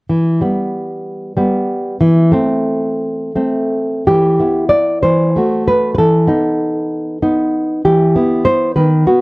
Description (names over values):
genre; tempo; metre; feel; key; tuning
romantic piece for solo classical guitar; 52-68 BPM (dotted quarters); 6/8; rubato; E minor; A4 = 441 Hz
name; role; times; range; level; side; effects
nylon-string guitar; solo; 0.1-9.2 s; D#3 to D5; -12 LUFS; equal; none
room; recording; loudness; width
little or no reverb; dry, close 1970s-style studio recording; -12 LUFS; side -24 dB against mid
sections
0.1-4.1 A section; 4.1-9.2 B section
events
none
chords
0.1 Em; 2.0 Am/E; 4.1 Em; 5.0 F#m7b5/E; 6.0 B7/E; 7.8 Em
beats
| 0.10 1.06 | 2.00 2.99 | 4.08 5.05 | 5.99 6.90 | 7.85 8.75